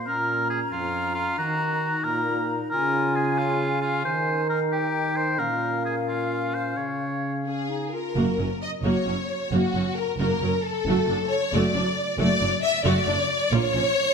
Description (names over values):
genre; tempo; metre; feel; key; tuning
cinematic; 90 BPM (dotted quarters); 6/8; straight; Db major; A4 = 440 Hz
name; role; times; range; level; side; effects
mellow clarinet; second line; 0.0-8.2 s; Db4 to F4; -32 LUFS; left 5 dB; none
silver concert flute; second line; 0.0-7.9 s; F5 to Bb5; -31 LUFS; left 2 dB; none
clear oboe; second line; 0.1-7.5 s; F4 to Db5; -26 LUFS; equal; none
mellow trombone section; sustained chords; 0.1-7.9 s; F2 to Eb3; -28 LUFS; right 3 dB; none
warm symphonic violin section; melody; 7.5-14.1 s; F#4 to E5; -30 LUFS; left 5 dB; none
rich symphonic violin section; second line; 7.5-14.1 s; F#4 to E5; -26 LUFS; left 2 dB; none
warm symphonic viola section; accompaniment; 8.2-13.8 s; E#3 to F#4; -28 LUFS; right 1 dB; none
rich symphonic cello section; bass; 8.2-13.8 s; F#2 to A#2; -28 LUFS; right 3 dB; none
warm symphonic double bass section; bass; 8.2-13.8 s; F#1 to A#1; -29 LUFS; right 2 dB; none
room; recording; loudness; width
wet scoring stage reverb, RT60 1.7 s; none; -22 LUFS; side -6 dB against mid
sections
0.0-8.2 A section; 8.2-14.1 B section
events
none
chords
0.1 Bbm; 1.4 Ebm; 2.7 Db; 4.1 Eb6; 5.4 Bbm; 6.8 Db; 8.2 F#; 10.9 D/F#; 13.5 A#m